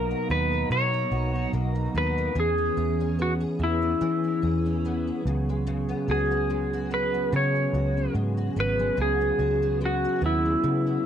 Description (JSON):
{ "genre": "indie pop, bedroom pop", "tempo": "73 BPM", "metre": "4/4", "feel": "swing 55% on 16ths", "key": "unclear", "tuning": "A4 = 440 Hz", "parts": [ { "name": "clean lap steel guitar", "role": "melody", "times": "0.0-11.1 s", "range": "E4 to C#5", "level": "-26 LUFS", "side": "left 1 dB", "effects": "wide subtle chorus, slapback echo" }, { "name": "mellow tonewheel organ", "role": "accompaniment", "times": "0.0-11.1 s", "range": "E3 to A#5", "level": "-31 LUFS", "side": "right 5 dB", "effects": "slow rotary speaker, cassette tape" }, { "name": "picked steel-string acoustic guitar", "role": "accompaniment", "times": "0.0-11.1 s", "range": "B2 to G#4", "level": "-33 LUFS", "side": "left 5 dB", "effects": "ensemble chorus, vibrato effect" }, { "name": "vintage muted picked electric bass", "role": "bass", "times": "0.0-11.0 s", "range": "G#1 to E3", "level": "-28 LUFS", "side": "right 1 dB", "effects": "none" } ], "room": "light reverb", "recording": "dry, close 1970s-style studio recording", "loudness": "-23 LUFS", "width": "side -9 dB against mid", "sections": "0.0-11.1 A section", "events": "none", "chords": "0.0 Bmaj7; 2.4 E6; 5.3 C#7sus4" }